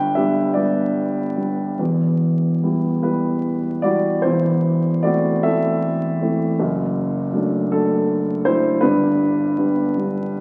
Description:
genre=classical, lyrical solo piano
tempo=48-54 BPM (dotted quarters)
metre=6/8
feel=rubato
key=A dorian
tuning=A4 = 440 Hz
part: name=dark baby grand piano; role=solo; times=0.0-10.4 s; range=E1 to G5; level=-20 LUFS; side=equal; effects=none
room=wet concert hall reverb, RT60 2.0 s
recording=very old 78 rpm record, vinyl crackle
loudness=-20 LUFS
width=mono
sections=0.0-10.4 A section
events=none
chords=0.0 G; 1.8 Em; 4.2 Am/E; 6.6 D/F#; 8.8 G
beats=0.55 | 1.78 3.03 | 4.23 5.43 | 6.59 7.70 | 8.82 9.97

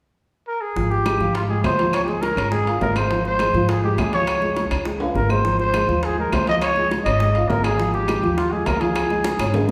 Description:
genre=Afro-Cuban jazz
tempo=205 BPM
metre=4/4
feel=straight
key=unclear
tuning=A4 = 440 Hz
part: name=growling trumpet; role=melody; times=0.5-9.7 s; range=F4 to Eb5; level=-24 LUFS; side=equal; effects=none
part: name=dark concert grand piano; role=accompaniment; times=0.8-9.7 s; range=F3 to F5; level=-27 LUFS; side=equal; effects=none
part: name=upright bass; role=bass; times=0.8-9.7 s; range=Ab1 to Ab2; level=-26 LUFS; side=equal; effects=none
part: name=bongos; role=percussion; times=0.8-9.7 s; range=none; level=-32 LUFS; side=equal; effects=none
part: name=claves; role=percussion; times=1.1-9.5 s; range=none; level=-37 LUFS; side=equal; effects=none
part: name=timbales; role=percussion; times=1.1-9.6 s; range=none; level=-32 LUFS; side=equal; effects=none
room=wet recital hall reverb, RT60 1.6 s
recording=recorded in a church or concert hall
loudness=-20 LUFS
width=mono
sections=0.8-9.7 A section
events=drum fill 5.0-5.5, 9.3-9.7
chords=0.0 N.C.; 0.8 Db; 5.5 Ab6; 6.6 Dbadd9; 7.8 Ab5; 9.0 Db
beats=0.17 0.47 | 0.76 1.05 1.35 1.64 | 1.93 2.23 2.52 2.81 | 3.11 3.40 3.69 3.98 | 4.28 4.57 4.86 5.16 | 5.45 5.74 6.04 6.33 | 6.62 6.91 7.21 7.50 | 7.79 8.08 8.38 8.67 | 8.96 9.25 9.54

